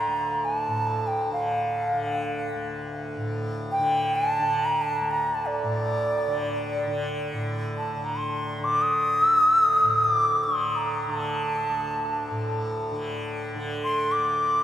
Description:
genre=indian classical, Hindustani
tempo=free time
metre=none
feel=none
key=D raga bhairavi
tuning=A4 = 440 Hz
part: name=bright bansuri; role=melody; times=0.0-14.6 s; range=D5 to Eb6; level=-23 LUFS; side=equal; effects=none
part: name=tanpura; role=drone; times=0.0-14.6 s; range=D2 to D3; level=-30 LUFS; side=equal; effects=none
room=wet cathedral reverb, RT60 5.4 s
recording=in a vast, echoing space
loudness=-23 LUFS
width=side -11 dB against mid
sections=0.0-7.3 A section; 7.3-14.6 A section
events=none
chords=none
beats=free time

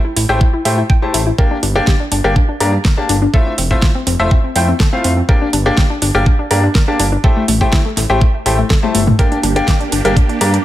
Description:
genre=progressive house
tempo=123 BPM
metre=4/4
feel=straight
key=G dorian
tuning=A4 = 440 Hz
part: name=analog pluck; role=arpeggios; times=0.0-10.6 s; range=A3 to G5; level=-20 LUFS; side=left 2 dB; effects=chorus, sidechain pumping, tape echo
part: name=fat analog bass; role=bass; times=0.2-10.6 s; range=F1 to A2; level=-16 LUFS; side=equal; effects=sidechain pumping
part: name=pop drum kit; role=drums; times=0.2-10.6 s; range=hi-hat, snare drum, toms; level=-19 LUFS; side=right 1 dB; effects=small room reverb
part: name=bright baby grand piano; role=stabs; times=0.3-10.5 s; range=A3 to Bb5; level=-18 LUFS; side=left 2 dB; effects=sidechain pumping, tape echo
part: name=electronic kick drum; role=drums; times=0.4-10.3 s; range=none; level=-13 LUFS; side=equal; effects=small room reverb
part: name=supersaw pad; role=sustained chords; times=9.2-10.6 s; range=Bb3 to G4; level=-21 LUFS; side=right 5 dB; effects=phaser, sidechain pumping
room=digital ambience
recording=none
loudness=-11 LUFS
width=side -14 dB against mid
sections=0.0-10.6 A section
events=drum fill 8.7-9.2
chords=0.0 Am7; 1.4 Gm; 3.3 Fmaj7; 5.3 Gm; 7.2 Am7; 9.2 Gm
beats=0.41 0.90 | 1.39 1.87 2.36 2.85 | 3.34 3.82 4.31 4.80 | 5.29 5.78 6.26 6.75 | 7.24 7.73 8.21 8.70 | 9.19 9.68 10.17

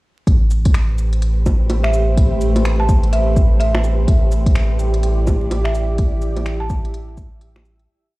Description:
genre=future garage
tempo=126 BPM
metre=4/4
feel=swing 61% on 16ths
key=A minor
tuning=A4 = 440 Hz
part: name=granular cloud pad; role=sustained chords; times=1.3-7.9 s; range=A3 to E5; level=-24 LUFS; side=equal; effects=built-in reverb, sidechain pumping
part: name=soft dub sub bass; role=bass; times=0.3-7.9 s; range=A1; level=-18 LUFS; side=equal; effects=sidechain pumping
part: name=electronic kick drum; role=drums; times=0.3-7.3 s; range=none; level=-15 LUFS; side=equal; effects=studio reverb
part: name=organic electronic drum kit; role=drums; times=0.3-7.9 s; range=bongos, cabasa, finger snaps, hi-hat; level=-27 LUFS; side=equal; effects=studio reverb
part: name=buzzing marimba with medium hard mallets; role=melody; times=1.8-6.8 s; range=E5 to A5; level=-25 LUFS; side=right 2 dB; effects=analog delay
room=little or no reverb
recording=played on a big sound system in a bare room, stone room reverb, vinyl crackle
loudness=-14 LUFS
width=side -20 dB against mid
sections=0.3-7.9 chorus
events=fade-out 5.3-7.9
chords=0.3 Am9; 4.1 Em7/A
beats=| 0.27 0.74 1.22 1.70 | 2.17 2.65 3.12 3.60 | 4.08 4.55 5.03 5.50 | 5.98 6.46 6.93 7.41

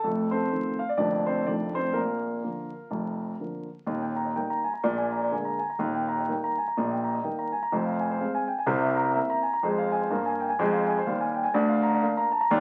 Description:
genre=jazz, stride piano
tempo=125 BPM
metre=4/4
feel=swing 60% on 8ths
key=Bb major, Eb major from 3.9 s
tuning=A4 = 440 Hz
part: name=warm grand piano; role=solo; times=0.0-12.6 s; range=Eb1 to Bb5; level=-27 LUFS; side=equal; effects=none
room=wet studio reverb, RT60 0.5 s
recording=very old 78 rpm record, vinyl crackle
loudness=-27 LUFS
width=mono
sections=0.0-3.9 A section; 3.9-12.6 B section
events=none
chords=0.0 F7; 1.0 Bb/F; 1.5 F7; 2.0 Bb; 3.9 Eb; 4.9 Bb7; 5.8 Eb; 7.7 Fm; 8.7 C7; 9.6 Fm; 11.6 Bb/D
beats=| 0.04 0.53 1.01 1.49 | 1.97 2.45 2.93 3.41 | 3.89 4.37 4.85 5.33 | 5.81 6.29 6.77 7.25 | 7.73 8.21 8.69 9.16 | 9.64 10.12 10.60 11.08 | 11.56 12.04 12.51

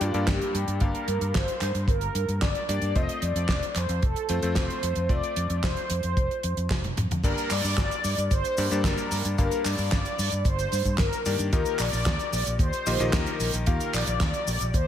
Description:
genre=italo disco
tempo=112 BPM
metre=4/4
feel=straight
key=G minor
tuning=A4 = 440 Hz
part: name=mellow synth brass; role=melody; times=0.0-14.9 s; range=F4 to Eb5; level=-30 LUFS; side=equal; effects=chorus, ping-pong delay
part: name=clear electric grand piano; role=stabs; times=0.0-14.9 s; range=G2 to F5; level=-33 LUFS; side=left 4 dB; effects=low-pass filter
part: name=fingered electric bass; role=bass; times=0.0-14.9 s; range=F1 to G2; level=-29 LUFS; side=equal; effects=none
part: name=damped 70s drum kit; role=drums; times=0.0-14.8 s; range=cabasa, crash cymbal, handclaps, hi-hat, snare drum, toms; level=-30 LUFS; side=right 2 dB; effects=gated reverb
part: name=kick drum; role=drums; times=0.3-14.8 s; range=none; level=-26 LUFS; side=equal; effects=none
room=light reverb, small room reverb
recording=none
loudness=-23 LUFS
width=side -10 dB against mid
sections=0.0-7.2 A section; 7.2-14.9 B section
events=drum fill 6.7-7.2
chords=0.0 Gm; 3.0 F; 7.2 Gm; 11.5 Ebadd9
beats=0.28 | 0.81 1.35 1.88 2.42 | 2.96 3.49 4.03 4.56 | 5.10 5.63 6.17 6.71 | 7.24 7.78 8.31 8.85 | 9.38 9.92 10.46 10.99 | 11.53 12.06 12.60 13.13 | 13.67 14.21 14.74

